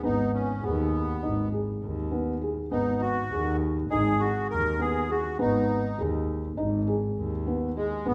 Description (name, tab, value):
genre	contemporary instrumental, chamber music in an uneven meter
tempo	202 BPM (eighths)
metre	9/8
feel	straight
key	G# minor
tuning	A4 = 439 Hz
part	accordion	melody	0.0-8.1 s	G#3 to A#4	-33 LUFS	equal	light tremolo tuning
part	felt-muted upright piano	arpeggios	0.0-8.1 s	B3 to G#4	-32 LUFS	equal	none
part	warm double bass	bass	0.0-8.1 s	G#1 to D#2	-31 LUFS	equal	none
room	wet recital hall reverb, RT60 1.4 s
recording	recorded in a church or concert hall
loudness	-28 LUFS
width	mono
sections	0.0-8.1 A section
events	none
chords	0.0 G#m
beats	| 0.03 0.33 0.63 0.93 1.22 1.52 1.82 2.12 2.42 | 2.71 3.01 3.31 3.61 3.90 4.20 4.50 4.80 5.09 | 5.39 5.69 5.99 6.28 6.58 6.88 7.17 7.47 7.77 | 8.07